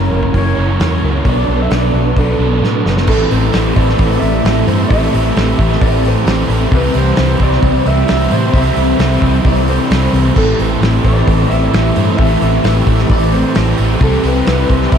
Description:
rock, shoegaze and dream pop; 132 BPM; 4/4; straight; A minor; A4 = 440 Hz
electric guitar through a small old amp; melody; 0.0-15.0 s; A4 to E5; -20 LUFS; right 1 dB; analog delay
hollow soft pad; sustained chords; 0.0-15.0 s; E3 to C#5; -22 LUFS; left 1 dB; chorus
crunchy overdriven guitar; riff; 0.0-15.0 s; F#2 to E4; -18 LUFS; right 7 dB; reverse reverb
thick fuzz guitar; riff; 0.0-15.0 s; F#2 to C4; -19 LUFS; left 7 dB; distortion, ensemble chorus
vintage muted fingered electric bass; bass; 0.0-15.0 s; F#1 to A2; -15 LUFS; equal
loose indie drum kit; drums; 0.2-15.0 s; crash cymbal, hi-hat, kick drum, snare drum; -18 LUFS; equal
raw garage guitar; riff; 3.1-15.0 s; A2 to C4; -23 LUFS; equal; overdrive, lush chorus
moderate lush hall reverb, RT60 1.7 s, small room ambience; dreamy mix soaked in reverb; -10 LUFS; side -8 dB against mid
0.0-3.1 A section; 3.1-15.0 B section
drum fill 2.6-3.1
0.0 F#7; 1.3 Bm7; 3.1 Am7; 6.7 C; 10.4 Am7; 14.0 Cmaj7

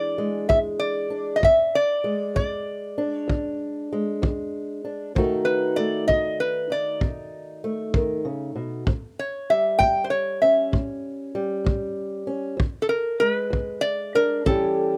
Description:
acoustic country blues, solo or duo; 64 BPM (dotted quarters); 12/8; straight; E mixolydian; A4 = 440 Hz
metal-body resonator slide guitar; melody; 0.0-15.0 s; A4 to G5; -24 LUFS; equal
fingerpicked old ladder-braced acoustic guitar; accompaniment; 0.0-15.0 s; E2 to G#4; -29 LUFS; equal
kick drum; drums; 0.5-14.6 s; -26 LUFS; equal
little or no reverb; rough home demo mix; -24 LUFS; mono
0.0-15.0 A section
0.0 E7; 5.1 B7; 8.9 A7; 12.6 E7; 14.5 A7

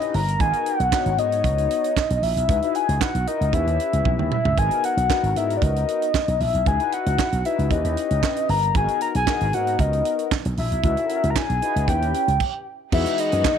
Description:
early-eighties boogie funk; 115 BPM; 4/4; straight; G# minor; A4 = 440 Hz
soft octave-layered synth lead; melody; 0.0-13.6 s; D5 to A#5; -23 LUFS; left 1 dB; chorus, phaser, slapback echo
mellow synth brass; accompaniment; 0.0-13.5 s; A#3 to C#5; -28 LUFS; left 15 dB; chorus
tight funk drum kit; drums; 0.0-13.6 s; crash cymbal, handclaps, hi-hat, kick drum, snare drum, toms; -25 LUFS; right 4 dB
slap bass with an envelope filter; bass; 0.1-13.4 s; G1 to G#2; -23 LUFS; right 1 dB
bright studio string section; sustained chords; 12.9-13.6 s; E3 to F#4; -30 LUFS; equal
studio reverb; 1960s-style stereo; -19 LUFS; side -8 dB against mid
0.0-12.9 A section
drum fill 4.1-4.6; stop 12.4-12.9
0.4 G#m7; 2.5 C#m11; 3.5 D#7b9b13; 4.6 G#m7; 6.7 C#m11; 7.7 D#7b9b13; 8.7 G#m7; 10.8 C#m11; 11.9 D#7b9b13; 12.9 Emaj9

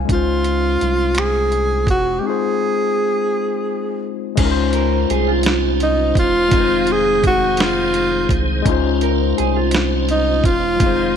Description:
slow six-eight R&B; 56 BPM (dotted quarters); 6/8; straight; Db major; A4 = 440 Hz
overdriven tine electric piano; accompaniment; 0.0-11.2 s; G3 to Ab5; -21 LUFS; left 13 dB
rubbery square bass; bass; 0.0-11.2 s; Fb1 to Db2; -22 LUFS; right 1 dB
breathy tenor saxophone; melody; 0.1-11.2 s; Eb4 to Ab4; -18 LUFS; right 1 dB; slapback echo
dusty soul sampler-style drum kit; drums; 0.1-11.0 s; crash cymbal, finger snaps, hi-hat, kick drum, snare drum; -20 LUFS; right 1 dB
tonewheel organ; sustained chords; 4.4-11.2 s; Eb3 to C5; -25 LUFS; right 2 dB; overdrive, chorus vibrato, slow rotary speaker
mellow electric guitar; second line; 4.7-10.6 s; F4 to Bb4; -23 LUFS; right 14 dB; lush chorus
light reverb, digital ambience; 1960s-style stereo with parts hard left and right; -15 LUFS; side -8 dB against mid
0.0-4.4 A section; 4.4-11.2 B section
break 2.2-4.4
0.1 Dbmaj9; 2.2 Fm7; 4.4 Dbmaj9; 6.5 Fm7; 8.7 Dbmaj9

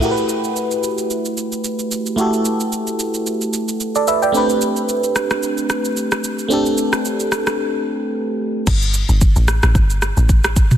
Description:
amapiano; 111 BPM; 4/4; swing 55% on 16ths; G major; A4 = 440 Hz
FM electric piano; accompaniment; 0.0-8.7 s; A3 to G5; -18 LUFS; right 1 dB; chorus, phaser
afro-pop drum kit; drums; 0.0-10.8 s; crash cymbal, kick drum, rim click, shaker, toms; -19 LUFS; equal
deep log drum bass; bass; 8.7-10.8 s; G1 to A1; -16 LUFS; equal
light reverb, digital ambience; dense, heavily limited modern master; -16 LUFS; side -10 dB against mid
0.0-8.7 A section; 8.7-10.8 B section
break 7.6-8.7; drop 8.7-10.8
0.0 Gmaj13; 4.3 Am11; 8.7 Gsus2

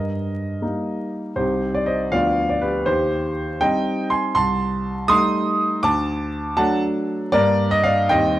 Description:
classical-period piano sonatina; 80 BPM (dotted quarters); 6/8; rubato; G minor from 4.4 s; A4 = 442 Hz
warm grand piano; solo; 0.0-8.4 s; C2 to Eb6; -18 LUFS; equal
light reverb; close, detailed microphones, vinyl crackle; -18 LUFS; side -14 dB against mid
0.0-8.4 A section
0.0 Eb/G; 1.4 Cm; 2.1 Bdim/D; 2.9 Cm/Eb; 4.4 Am7b5/C; 5.8 D; 7.3 Gm

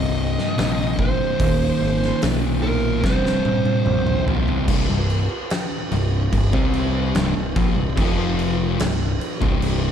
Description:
stoner and doom metal; 73 BPM; 4/4; straight; C minor; A4 = 440 Hz
fuzz lead guitar; melody; 0.0-4.2 s; Bb4 to Eb5; -25 LUFS; right 5 dB; distortion, digital delay
fuzz guitar; riff; 0.0-9.9 s; C2 to C4; -26 LUFS; right 9 dB; distortion
thick fuzz guitar; riff; 0.0-9.9 s; C2 to C4; -24 LUFS; left 9 dB; distortion
growling picked electric bass; bass; 0.0-9.9 s; C1 to C2; -25 LUFS; equal; overdrive
oversized low-tuned drum kit; drums; 0.4-9.8 s; crash cymbal, hi-hat, kick drum, snare drum, toms; -23 LUFS; equal
little or no reverb; dark, warm production; -18 LUFS; side -8 dB against mid
0.0-4.7 A section; 4.7-9.9 B section
drum fill 3.0-4.7
0.0 Cm; 1.4 Eb5; 3.0 C5; 8.0 F5; 8.8 C5

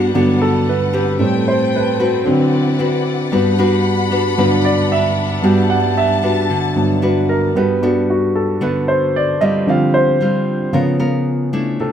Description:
bossa nova; 113 BPM; 4/4; straight; G major; A4 = 440 Hz
nylon-string guitar; accompaniment; 0.0-11.9 s; C3 to B4; -18 LUFS; left 1 dB
warm grand piano; accompaniment; 0.0-11.9 s; G2 to F#5; -16 LUFS; right 1 dB
warm symphonic string section; sustained chords; 0.0-7.5 s; G3 to B5; -23 LUFS; left 5 dB
light reverb; -13 LUFS; side -9 dB against mid
0.0-7.6 A section; 7.6-11.9 A section
grand piano solo 0.0-11.9
0.0 Gmaj7; 1.2 Am9; 2.3 D13; 3.3 Gmaj7; 7.6 Gmaj9; 9.7 Dm7; 10.7 C#6

